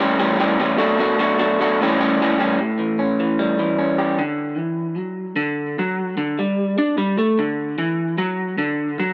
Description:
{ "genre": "rock", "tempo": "150 BPM", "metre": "4/4", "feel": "straight", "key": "D major", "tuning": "A4 = 441 Hz", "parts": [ { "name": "electric guitar through a small old amp", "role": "solo", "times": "0.0-9.1 s", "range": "A2 to G4", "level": "-20 LUFS", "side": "equal", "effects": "analog delay" } ], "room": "moderate studio reverb, RT60 0.8 s", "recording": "none", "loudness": "-20 LUFS", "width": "mono", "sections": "0.0-2.6 A section; 2.6-4.2 B section; 4.2-9.1 C section", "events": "none", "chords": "0.0 A7; 0.8 Bm7; 1.8 A7; 4.2 D" }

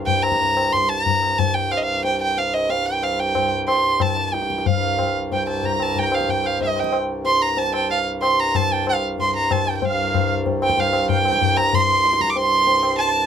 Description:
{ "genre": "indian classical, Hindustani", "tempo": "186 BPM", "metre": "4/4", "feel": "straight", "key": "C raga bhimpalasi", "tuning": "A4 = 440 Hz", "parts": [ { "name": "hand-pumped harmonium", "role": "drone", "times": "0.0-13.3 s", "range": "C2 to G2", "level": "-28 LUFS", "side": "equal", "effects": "none" }, { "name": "dark violin", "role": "melody", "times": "0.1-13.3 s", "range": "Eb5 to D6", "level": "-20 LUFS", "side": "right 2 dB", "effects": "none" }, { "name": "tabla", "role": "percussion", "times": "0.1-13.1 s", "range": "none", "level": "-23 LUFS", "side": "left 5 dB", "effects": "none" }, { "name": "hand-pumped harmonium", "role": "second line", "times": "4.7-13.3 s", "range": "Eb5 to C6", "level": "-27 LUFS", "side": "right 7 dB", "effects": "none" } ], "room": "light reverb", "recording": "close, detailed microphones", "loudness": "-17 LUFS", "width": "side -8 dB against mid", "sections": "0.0-9.8 A section; 9.8-13.3 B section", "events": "speeding up 0.0-13.3", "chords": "none" }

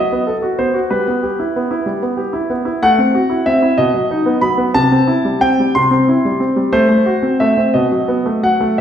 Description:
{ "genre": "classical-period piano sonatina", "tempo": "57-63 BPM (dotted quarters)", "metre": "6/8", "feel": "rubato", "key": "unclear", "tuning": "A4 = 441 Hz", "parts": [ { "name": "clear concert grand piano", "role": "solo", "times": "0.0-8.8 s", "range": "B2 to C6", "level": "-13 LUFS", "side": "equal", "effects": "none" } ], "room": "wet recital hall reverb, RT60 1.6 s", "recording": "heard from further back in the room", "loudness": "-13 LUFS", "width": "side -9 dB against mid", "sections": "0.0-8.8 A section", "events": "none", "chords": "0.0 B7/F#; 0.9 Em/G; 2.8 F#m7b5/A; 3.8 B; 4.7 C; 6.7 F#dim/A; 7.7 B7" }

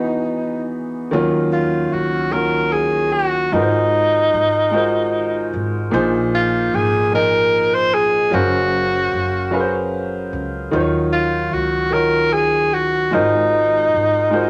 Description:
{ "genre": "slow six-eight R&B", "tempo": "50 BPM (dotted quarters)", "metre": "6/8", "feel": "straight", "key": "Eb dorian", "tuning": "A4 = 440 Hz", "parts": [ { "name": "warm tenor saxophone", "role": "melody", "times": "0.0-14.5 s", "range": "Eb4 to C5", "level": "-19 LUFS", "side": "equal", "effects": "none" }, { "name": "warm concert grand piano", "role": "accompaniment", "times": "0.0-14.5 s", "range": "Bb2 to F5", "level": "-22 LUFS", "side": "equal", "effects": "none" }, { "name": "upright bass", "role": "bass", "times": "1.1-14.5 s", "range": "Gb1 to Eb2", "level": "-29 LUFS", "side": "equal", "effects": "none" } ], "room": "moderate studio reverb, RT60 0.6 s", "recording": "none", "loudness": "-18 LUFS", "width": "mono", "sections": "0.0-1.1 A section; 1.1-14.5 B section", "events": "break 0.0-1.1", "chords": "0.0 Emaj7; 1.1 Ebm9; 3.5 Ab13; 5.9 Bb9sus4; 8.3 Gbmaj9#11; 10.7 Ebm9; 13.1 Ab13" }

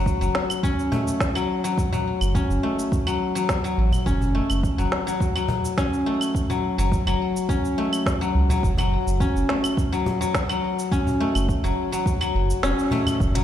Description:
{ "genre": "organic downtempo", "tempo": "105 BPM", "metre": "4/4", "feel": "straight", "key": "F# minor", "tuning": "A4 = 440 Hz", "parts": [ { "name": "guzheng", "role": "arpeggios", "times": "0.0-13.4 s", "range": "F#3 to C#4", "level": "-24 LUFS", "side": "left 2 dB", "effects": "ping-pong delay" }, { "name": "warm sub bass", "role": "bass", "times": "0.0-13.4 s", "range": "E1 to C#2", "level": "-22 LUFS", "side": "right 1 dB", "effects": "none" }, { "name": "electronic kick drum", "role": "drums", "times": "0.1-13.3 s", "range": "none", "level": "-24 LUFS", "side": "right 1 dB", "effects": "none" }, { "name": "organic electronic drum kit", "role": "drums", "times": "0.1-13.4 s", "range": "claves, hi-hat, shaker, snare drum", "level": "-30 LUFS", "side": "right 1 dB", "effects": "none" }, { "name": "cajon", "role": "percussion", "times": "0.5-13.4 s", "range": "none", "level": "-31 LUFS", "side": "equal", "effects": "none" } ], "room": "light reverb", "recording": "played on a big sound system in a bare room, large studio reverb", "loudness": "-20 LUFS", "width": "side -11 dB against mid", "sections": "0.0-13.2 A section", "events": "kick drops out 12.6-13.2; band accent 12.6", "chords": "0.0 F#m; 8.6 N.C." }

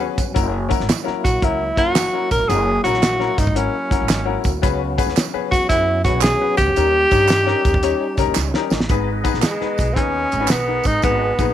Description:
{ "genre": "uptempo 1960s-style soul", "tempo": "112 BPM", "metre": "4/4", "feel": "swing 66% on 8ths", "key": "unclear", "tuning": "A4 = 439 Hz", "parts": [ { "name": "warm tenor saxophone", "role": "melody", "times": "0.0-11.5 s", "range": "G#3 to A#4", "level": "-18 LUFS", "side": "equal", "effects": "none" }, { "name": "bright upright piano", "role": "accompaniment", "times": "0.0-11.5 s", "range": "G#2 to C#5", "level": "-24 LUFS", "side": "left 13 dB", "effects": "none" }, { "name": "percussive tonewheel organ", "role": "sustained chords", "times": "0.0-11.5 s", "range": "F#3 to D#5", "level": "-29 LUFS", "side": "equal", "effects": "overdrive, chorus vibrato, slow rotary speaker" }, { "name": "upright bass", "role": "bass", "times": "0.0-11.5 s", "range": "F#1 to G2", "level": "-24 LUFS", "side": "right 1 dB", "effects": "none" }, { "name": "cloth-damped thuddy drum kit", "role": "drums", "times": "0.2-11.5 s", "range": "hi-hat, kick drum, snare drum", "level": "-20 LUFS", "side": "right 1 dB", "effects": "none" }, { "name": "tambourine and handclaps", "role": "percussion", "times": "0.2-11.5 s", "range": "none", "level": "-29 LUFS", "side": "right 16 dB", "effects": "none" } ], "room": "small room ambience", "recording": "1960s-style stereo with parts hard left and right", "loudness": "-16 LUFS", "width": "side -11 dB against mid", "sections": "0.0-8.9 A section; 8.9-11.5 B section", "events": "drum fill 8.4-8.9; tenor saxophone solo 8.9-11.5", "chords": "0.4 F#7; 4.6 C#7sus4; 6.8 D#7; 8.9 G#m" }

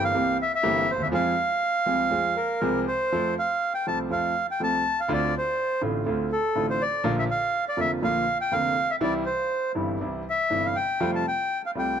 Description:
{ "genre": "tango", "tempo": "122 BPM", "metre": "4/4", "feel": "rubato", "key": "F minor, F major from 3.1 s", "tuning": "A4 = 438 Hz", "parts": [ { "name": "bandoneon", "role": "melody", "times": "0.0-12.0 s", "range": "A4 to A5", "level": "-24 LUFS", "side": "equal", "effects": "none" }, { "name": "clear concert grand piano", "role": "accompaniment", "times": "0.0-12.0 s", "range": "F1 to A4", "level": "-27 LUFS", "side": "right 1 dB", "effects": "none" } ], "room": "light reverb", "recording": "dark, warm production", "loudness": "-23 LUFS", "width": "side -8 dB against mid", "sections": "0.0-3.1 A section; 3.1-12.0 B section", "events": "none", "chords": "0.0 C7; 1.1 Fm; 3.1 F; 5.1 Dm7; 7.1 Bb; 9.0 C; 11.0 Fadd9" }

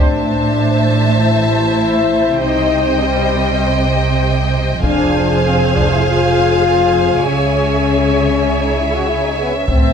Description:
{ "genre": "cinematic, epic orchestral film score", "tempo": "99 BPM", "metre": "4/4", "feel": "straight", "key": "unclear", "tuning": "A4 = 443 Hz", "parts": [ { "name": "warm symphonic violin section", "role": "second line", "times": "0.0-9.9 s", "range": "Eb5 to A5", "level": "-20 LUFS", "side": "left 2 dB", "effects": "none" }, { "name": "warm symphonic viola section", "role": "accompaniment", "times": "0.0-9.9 s", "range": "Ab4 to E5", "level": "-20 LUFS", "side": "right 1 dB", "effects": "none" }, { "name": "warm French horn section", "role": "sustained chords", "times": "0.0-9.9 s", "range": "G3 to F#4", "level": "-17 LUFS", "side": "left 4 dB", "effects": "none" }, { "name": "dark symphonic cello section", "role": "bass", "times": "0.0-9.9 s", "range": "F2 to C#3", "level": "-20 LUFS", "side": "right 2 dB", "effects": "none" }, { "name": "dark symphonic double bass section", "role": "bass", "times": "0.0-9.9 s", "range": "F1 to C#2", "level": "-20 LUFS", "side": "right 3 dB", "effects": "none" }, { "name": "taiko ensemble", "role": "drums", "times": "4.8-6.0, 9.7-9.9 s", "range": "none", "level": "-17 LUFS", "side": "equal", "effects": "none" } ], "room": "moderate scoring stage reverb, RT60 2.1 s", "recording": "none", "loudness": "-12 LUFS", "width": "side -7 dB against mid", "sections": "0.0-9.9 A section", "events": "none", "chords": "0.0 Am; 2.4 Cm; 4.8 Fm; 7.3 C#m" }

